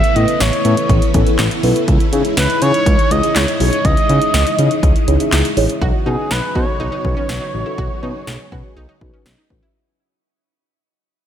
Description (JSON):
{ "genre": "synth-pop", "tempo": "122 BPM", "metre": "4/4", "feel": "straight", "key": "unclear", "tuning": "A4 = 442 Hz", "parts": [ { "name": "expressive portamento lead", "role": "melody", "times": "0.0-9.2 s", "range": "G#4 to E5", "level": "-20 LUFS", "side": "equal", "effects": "chorus, analog delay, shimmer reverb" }, { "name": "string machine, full ensemble", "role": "sustained chords", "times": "0.0-9.7 s", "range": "C#3 to G#4", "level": "-22 LUFS", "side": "left 1 dB", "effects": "ensemble chorus, shimmer reverb" }, { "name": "deep house drum kit", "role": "drums", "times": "0.0-9.6 s", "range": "handclaps, hi-hat, kick drum, snare drum", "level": "-18 LUFS", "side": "equal", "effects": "none" }, { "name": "muted felt-like synth keys", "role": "accompaniment", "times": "0.2-9.8 s", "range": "B3 to G#5", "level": "-22 LUFS", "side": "equal", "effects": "chorus, phaser, shimmer reverb" }, { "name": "smooth synth bass", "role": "bass", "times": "0.2-9.6 s", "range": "A1 to C#3", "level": "-17 LUFS", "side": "equal", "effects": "none" }, { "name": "analog pluck", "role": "arpeggios", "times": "5.8-9.7 s", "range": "B3 to F#4", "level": "-30 LUFS", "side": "right 3 dB", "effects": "chorus, analog delay, shimmer reverb" } ], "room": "light reverb", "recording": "echo-heavy mix", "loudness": "-13 LUFS", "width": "side -10 dB against mid", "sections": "0.0-5.8 A section; 5.8-9.7 B section", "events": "synth keys fill 0.9-1.9, 9.0-9.7; fade-out 5.8-9.7", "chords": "0.0 Aadd9; 1.9 C#madd9; 5.8 Badd9" }